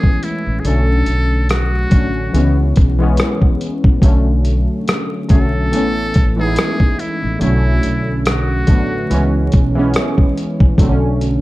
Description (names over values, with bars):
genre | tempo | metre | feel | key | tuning
lo-fi hip hop | 71 BPM | 4/4 | swing 56% on 16ths | B dorian | A4 = 441 Hz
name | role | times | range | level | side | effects
trumpet with metal mute | melody | 0.0-9.5 s | E4 to A4 | -23 LUFS | equal | low-pass filter
warm analog keys | accompaniment | 0.0-11.4 s | C#3 to E4 | -18 LUFS | equal | chorus, cassette tape, low-pass filter
dusty soul sampler-style drum kit | drums | 0.0-11.4 s | hi-hat, kick drum, rim click | -14 LUFS | equal | none
upright bass | bass | 0.5-11.4 s | A1 to C#2 | -17 LUFS | equal | none
room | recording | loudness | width
little or no reverb | dark, warm production, vinyl crackle | -13 LUFS | side -18 dB against mid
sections
0.0-11.4 A section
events
none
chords
0.0 Amaj7; 0.6 Bm9; 2.3 C#m7; 4.0 Bm9; 5.7 Amaj7; 7.4 Bm9; 9.1 C#m7; 10.8 Bm9